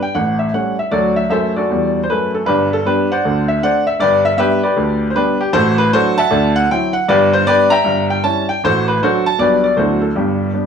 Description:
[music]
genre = jazz, stride piano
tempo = 156 BPM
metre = 4/4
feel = swing 64% on 8ths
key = G major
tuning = A4 = 439 Hz
[part]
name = clear baby grand piano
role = solo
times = 0.0-10.7 s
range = G1 to Bb5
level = -13 LUFS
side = equal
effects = none
[sound]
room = moderate club reverb, RT60 0.7 s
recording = studio reverb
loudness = -13 LUFS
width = side -7 dB against mid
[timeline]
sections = 0.0-10.7 A section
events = none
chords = 0.1 A7; 0.9 D7; 2.5 G; 3.2 D5; 4.0 G; 5.5 D/A; 6.3 D9; 7.1 G; 7.9 Gdim7; 8.6 D/A; 9.4 G/B; 9.8 D13; 10.2 G

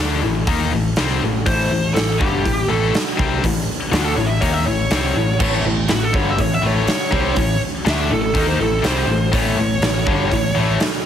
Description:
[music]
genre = hard rock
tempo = 122 BPM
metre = 4/4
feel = straight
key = unclear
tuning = A4 = 440 Hz
[part]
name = tight distorted guitar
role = riff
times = 0.0-10.8 s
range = G2 to D#4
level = -22 LUFS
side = left 7 dB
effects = distortion
[part]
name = picked electric bass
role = bass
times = 0.0-10.8 s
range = G1 to D#2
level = -22 LUFS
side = right 1 dB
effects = none
[part]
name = huge arena drum kit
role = drums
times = 0.5-10.9 s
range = crash cymbal, hi-hat, kick drum, snare drum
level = -21 LUFS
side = right 1 dB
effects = none
[part]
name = bluesy overdriven lead guitar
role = melody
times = 1.5-10.8 s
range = F#4 to E5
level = -22 LUFS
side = right 1 dB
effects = distortion
[part]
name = tight distorted guitar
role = riff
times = 5.4-10.9 s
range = G2 to D#4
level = -25 LUFS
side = right 2 dB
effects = distortion
[sound]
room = light reverb, studio ambience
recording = heavily compressed radio sound, multiband compression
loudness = -16 LUFS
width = side -9 dB against mid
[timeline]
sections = 0.0-11.1 A section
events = lead electric guitar solo 0.0-11.1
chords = 0.0 A

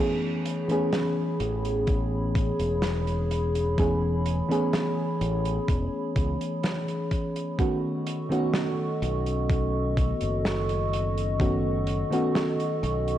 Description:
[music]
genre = vaporwave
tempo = 63 BPM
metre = 4/4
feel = straight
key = A lydian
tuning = A4 = 441 Hz
[part]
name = mellow FM electric piano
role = accompaniment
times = 0.0-13.2 s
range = D#3 to G#4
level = -28 LUFS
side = equal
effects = lush chorus, tape echo
[part]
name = warbly tape-like pad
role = sustained chords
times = 0.1-13.2 s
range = G#4 to C#6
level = -31 LUFS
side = equal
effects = chorus, built-in reverb
[part]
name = natural country drum kit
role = drums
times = 0.5-13.2 s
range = hi-hat, snare drum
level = -33 LUFS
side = right 1 dB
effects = none
[part]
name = modern bright fingered electric bass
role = bass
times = 1.4-13.2 s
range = E1 to C#2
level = -28 LUFS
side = equal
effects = none
[part]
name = electronic kick drum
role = drums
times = 1.9-11.6 s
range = none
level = -26 LUFS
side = equal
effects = overdrive
[sound]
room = light reverb, studio reverb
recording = cassette tape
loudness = -24 LUFS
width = side -12 dB against mid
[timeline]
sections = 0.0-13.2 A section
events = none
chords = 0.0 Amaj9; 7.6 B9

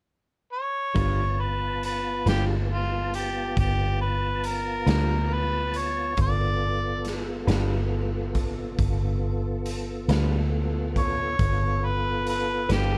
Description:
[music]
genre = slow blues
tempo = 46 BPM (dotted quarters)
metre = 12/8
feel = straight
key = G mixolydian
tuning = A4 = 439 Hz
[part]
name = mellow harmonica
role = melody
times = 0.5-13.0 s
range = F4 to D5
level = -30 LUFS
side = equal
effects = overdrive
[part]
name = electric guitar through a small old amp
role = accompaniment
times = 0.9-13.0 s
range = G3 to B4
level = -32 LUFS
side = equal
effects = harmonic tremolo
[part]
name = tonewheel organ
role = sustained chords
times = 1.0-13.0 s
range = B3 to A5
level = -35 LUFS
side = equal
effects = slow rotary speaker, chorus vibrato
[part]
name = vintage muted fingered electric bass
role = bass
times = 1.0-13.0 s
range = G1 to D2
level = -29 LUFS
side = equal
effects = none
[part]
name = raw garage drum kit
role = drums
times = 1.0-12.9 s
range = hi-hat, kick drum, snare drum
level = -34 LUFS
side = equal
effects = none
[sound]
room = little or no reverb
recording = dark, warm production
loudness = -26 LUFS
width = mono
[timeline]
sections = 1.0-13.0 A section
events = none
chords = 0.0 N.C.; 1.0 G7

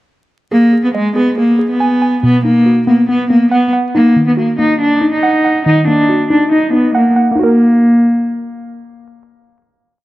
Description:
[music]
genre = hip hop, drill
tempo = 140 BPM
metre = 4/4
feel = half-time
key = Eb harmonic minor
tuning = A4 = 440 Hz
[part]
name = dark cello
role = melody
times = 0.5-8.6 s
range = Ab3 to Eb4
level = -11 LUFS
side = equal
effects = dub echo
[part]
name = warbly dusty pluck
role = accompaniment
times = 0.5-10.0 s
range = B2 to Ab5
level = -15 LUFS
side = equal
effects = chorus
[sound]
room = light reverb, studio reverb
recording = echo-heavy mix, vinyl crackle, low-pass filter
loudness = -9 LUFS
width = side -17 dB against mid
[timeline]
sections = 0.5-7.4 breakdown; 7.4-10.0 final chord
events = filter sweep 0.5-7.4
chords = 0.5 Abm; 2.2 B; 3.9 Ebm

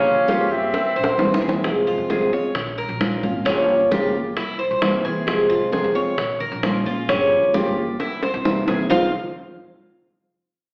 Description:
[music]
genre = latin, Cuban son and guajira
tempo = 132 BPM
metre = 4/4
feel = straight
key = F harmonic minor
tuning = A4 = 441 Hz
[part]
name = mellow silver concert flute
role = melody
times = 0.0-1.2 s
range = E5 to F5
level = -26 LUFS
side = equal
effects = none
[part]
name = growling trumpet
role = second line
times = 0.0-1.2 s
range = C4 to Db4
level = -30 LUFS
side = equal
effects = none
[part]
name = fingerpicked steel-string acoustic guitar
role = accompaniment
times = 0.0-9.1 s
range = F2 to G4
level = -26 LUFS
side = equal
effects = none
[part]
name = Cuban tres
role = arpeggios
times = 0.0-9.1 s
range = Db4 to F5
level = -25 LUFS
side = equal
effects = none
[part]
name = upright bass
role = bass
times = 0.0-9.1 s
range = F1 to C3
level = -35 LUFS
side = equal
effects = none
[part]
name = bongos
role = percussion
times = 0.1-9.0 s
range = none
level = -28 LUFS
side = equal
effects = none
[part]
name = congas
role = percussion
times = 0.1-9.0 s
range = none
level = -32 LUFS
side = equal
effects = none
[sound]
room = wet large studio reverb, RT60 1.2 s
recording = band playing live in one room, AM radio sound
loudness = -21 LUFS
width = mono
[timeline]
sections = 0.0-1.6 A section; 1.6-8.9 B section; 8.9-10.7 C section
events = drum fill 0.7-1.6, 8.0-8.9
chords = 0.0 Gm7b5; 0.7 C7; 1.6 Fm; 2.6 Bbm; 3.5 Gm7b5; 4.4 C7; 5.3 Fm; 6.2 Bbm; 7.1 Gm7b5; 8.0 C7; 8.9 F5

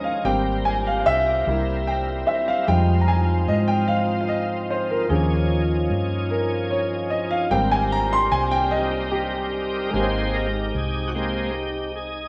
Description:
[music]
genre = slow gospel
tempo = 50 BPM (dotted quarters)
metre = 6/8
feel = straight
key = Ab major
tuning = A4 = 440 Hz
[part]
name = warm baby grand piano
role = accompaniment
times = 0.0-12.3 s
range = Ab2 to C6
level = -25 LUFS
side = equal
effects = none
[part]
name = bright tonewheel organ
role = sustained chords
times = 0.0-12.3 s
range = F3 to C5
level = -30 LUFS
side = equal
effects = slow rotary speaker, overdrive, chorus vibrato
[part]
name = dark French horn section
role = sustained chords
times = 0.0-12.3 s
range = F3 to Ab4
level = -35 LUFS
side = equal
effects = none
[part]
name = hollow-body short-scale fingered electric bass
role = bass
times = 0.2-12.3 s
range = Ab1 to Ab2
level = -27 LUFS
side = equal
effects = none
[sound]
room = wet large studio reverb, RT60 1.1 s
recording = band playing live in one room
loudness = -22 LUFS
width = mono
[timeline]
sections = 0.0-9.9 A section; 9.9-12.3 B section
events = grand piano solo 0.0-9.9; tonewheel organ solo 9.9-12.3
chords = 0.3 Abmaj9; 1.5 C7; 2.7 Fm9; 5.1 Eb9sus4; 7.5 Abmaj9

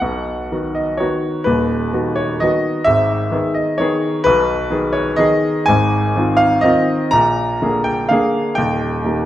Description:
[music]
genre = classical, romantic triple-time dance for piano with dotted rhythms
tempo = 126 BPM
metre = 3/4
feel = uneven beats, rubato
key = B major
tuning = A4 = 440 Hz
[part]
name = clear grand piano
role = solo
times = 0.0-9.3 s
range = D#1 to Bb5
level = -14 LUFS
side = equal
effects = none
[sound]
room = wet recital hall reverb, RT60 1.3 s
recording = recorded in a church or concert hall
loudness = -14 LUFS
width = side -13 dB against mid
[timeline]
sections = 0.0-9.3 A section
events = none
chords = 0.0 B; 1.5 B/D#; 2.9 G#m; 4.3 G#m/B; 5.7 Fm7/Ab; 7.1 Bb7; 8.6 Eb

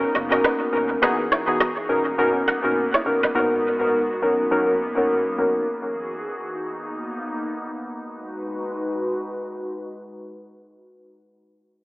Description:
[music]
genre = afrobeats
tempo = 103 BPM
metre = 4/4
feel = swing 58% on 16ths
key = G# minor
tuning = A4 = 440 Hz
[part]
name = warm analog keys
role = accompaniment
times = 0.0-5.7 s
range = G#2 to A#4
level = -20 LUFS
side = equal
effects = chorus, low-pass filter, analog delay
[part]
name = airy breathy pad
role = sustained chords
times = 0.0-11.1 s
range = F#2 to B4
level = -29 LUFS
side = equal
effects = chorus, low-pass filter
[part]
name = sub bass with octave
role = bass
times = 0.0-1.0 s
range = D#1 to F#1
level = -43 LUFS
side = equal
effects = none
[part]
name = kora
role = riff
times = 0.1-3.3 s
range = D#4 to F#5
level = -24 LUFS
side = right 1 dB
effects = low-pass filter, analog delay
[sound]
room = moderate echo chamber reverb, RT60 2.0 s, small room ambience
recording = echo-heavy mix, telephone sound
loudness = -20 LUFS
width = side -23 dB against mid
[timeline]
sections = 0.0-8.0 A section; 8.0-10.3 B section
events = filter sweep 0.0-8.0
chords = 0.0 Bmaj9/F#; 1.0 Emaj9; 1.9 Bmaj9; 3.3 G#m7; 4.2 Bmaj9/F#; 5.7 Emaj9; 6.6 Bmaj7; 8.0 G#m7

